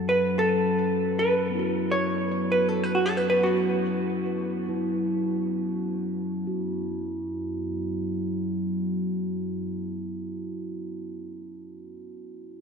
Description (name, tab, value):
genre	world meditative, free-time meditation music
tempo	free time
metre	none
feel	none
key	F# minor pentatonic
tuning	A4 = 439 Hz
part	vintage hollow-body jazz guitar	melody	0.0-5.7 s	F#4 to C#5	-25 LUFS	right 1 dB	ping-pong delay
part	deep rumbling drone	drone	0.0-11.0 s	F#2 to F#3	-29 LUFS	left 3 dB	built-in reverb
part	bronze singing bowl	texture	0.0-11.0 s	B3 to F#4	-32 LUFS	right 3 dB	none
room	wet cathedral reverb, RT60 6.2 s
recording	in a vast, echoing space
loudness	-24 LUFS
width	side -6 dB against mid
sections	0.0-6.5 A section; 6.5-10.7 B section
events	none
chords	none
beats	free time